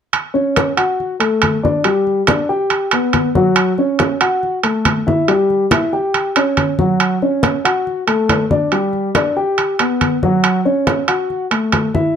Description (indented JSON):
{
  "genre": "Afro-Cuban jazz",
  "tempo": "140 BPM",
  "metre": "4/4",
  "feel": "straight",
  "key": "D major",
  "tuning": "A4 = 440 Hz",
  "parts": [
    { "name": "congas", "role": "percussion", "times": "0.1-12.2 s", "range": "none", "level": "-20 LUFS", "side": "left 1 dB", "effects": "none" },
    { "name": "timbales", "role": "percussion", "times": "0.1-11.9 s", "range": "none", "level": "-18 LUFS", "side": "right 6 dB", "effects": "none" },
    { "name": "dark baby grand piano", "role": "accompaniment", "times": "0.3-12.1 s", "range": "F#3 to G5", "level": "-16 LUFS", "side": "left 1 dB", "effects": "none" }
  ],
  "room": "moderate studio reverb, RT60 0.8 s",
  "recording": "dark, warm production",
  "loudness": "-13 LUFS",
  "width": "side -7 dB against mid",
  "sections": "0.1-12.2 A section",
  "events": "none",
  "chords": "0.1 Dmaj7; 1.9 G; 3.6 F#m7; 5.3 Em69; 7.0 Dmaj7; 8.7 G; 10.4 F#m7",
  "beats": "| 0.13 0.56 0.99 1.42 | 1.85 2.28 2.71 3.14 | 3.57 4.00 4.43 4.86 | 5.29 5.72 6.15 6.58 | 7.00 7.43 7.86 8.29 | 8.72 9.15 9.58 10.01 | 10.44 10.87 11.30 11.73"
}